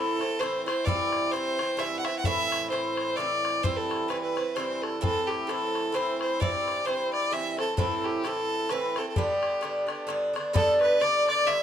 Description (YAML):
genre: celtic folk, Celtic waltz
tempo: 130 BPM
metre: 3/4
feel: swing 57% on 8ths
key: unclear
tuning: A4 = 443 Hz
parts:
  - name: clear fiddle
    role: melody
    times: 0.0-11.6 s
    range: G4 to F#5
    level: -28 LUFS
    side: equal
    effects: none
  - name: Irish bouzouki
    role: accompaniment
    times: 0.0-11.6 s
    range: G2 to E4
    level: -29 LUFS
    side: right 1 dB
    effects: none
  - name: bodhran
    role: percussion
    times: 0.2-11.6 s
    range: none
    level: -33 LUFS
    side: left 2 dB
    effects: none
  - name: accordion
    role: second line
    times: 10.5-11.6 s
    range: A4 to E5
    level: -33 LUFS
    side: right 1 dB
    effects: none
room: moderate booth ambience, RT60 0.2 s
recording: none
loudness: -25 LUFS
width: side -9 dB against mid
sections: 0.0-10.6 A section; 10.6-11.6 B section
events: none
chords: 0.0 Am; 0.9 C; 2.2 Am; 3.6 C; 5.0 Am; 6.4 C; 7.8 Am; 9.2 G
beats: 0.40 | 0.86 1.33 1.79 | 2.25 2.71 3.17 | 3.63 4.10 4.56 | 5.02 5.48 5.94 | 6.40 6.87 7.33 | 7.79 8.25 8.71 | 9.17 9.63 10.09 | 10.55 11.01 11.47